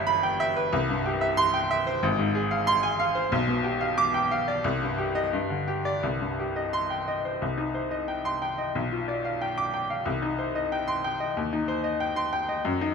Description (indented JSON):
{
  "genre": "classical, virtuoso piano study",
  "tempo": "92 BPM",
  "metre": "2/4",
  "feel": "rubato",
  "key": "C minor",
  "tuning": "A4 = 437 Hz",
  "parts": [
    { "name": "bright baby grand piano", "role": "solo", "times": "0.0-12.9 s", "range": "G1 to D6", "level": "-24 LUFS", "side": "equal", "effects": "none" }
  ],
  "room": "wet recital hall reverb, RT60 1.7 s",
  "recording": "minimal, uncompressed stereo recording",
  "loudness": "-24 LUFS",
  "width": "side -5 dB against mid",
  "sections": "0.0-7.4 A section; 7.4-12.9 B section",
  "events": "none",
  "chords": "0.0 Em/G; 0.7 C; 2.0 Fm/Ab; 3.3 G7/B; 4.6 Cm; 5.3 G5; 6.0 Cm; 8.8 G7/B; 10.1 Cm; 11.4 Cm/Eb"
}